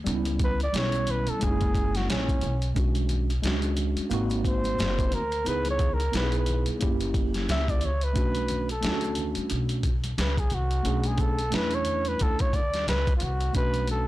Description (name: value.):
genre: hip hop, jazz-hop.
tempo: 89 BPM.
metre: 4/4.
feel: swing 57% on 16ths.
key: B dorian.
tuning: A4 = 440 Hz.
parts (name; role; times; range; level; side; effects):
mellow tine electric piano; accompaniment; 0.0-14.1 s; G3 to G#4; -31 LUFS; right 1 dB; medium stereo tremolo.
upright bass; bass; 0.0-14.1 s; F#1 to E2; -28 LUFS; equal; tube saturation.
boom bap sampler-style drum kit; drums; 0.1-14.1 s; hi-hat, kick drum, snare drum; -29 LUFS; equal; none.
maracas and congas; percussion; 0.1-14.1 s; none; -42 LUFS; left 1 dB; none.
mellow flugelhorn; melody; 0.4-14.1 s; C#4 to E5; -30 LUFS; right 1 dB; none.
room: small room ambience.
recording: blown-out, overdriven recording, overdrive.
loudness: -24 LUFS.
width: side -16 dB against mid.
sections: 0.0-13.6 A section.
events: flugelhorn solo 0.0-13.6.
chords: 0.1 C#m7b5; 1.4 F#7; 2.8 Bm69; 4.1 G#7; 5.5 C#m7; 6.8 F#7b9; 8.2 Bm7.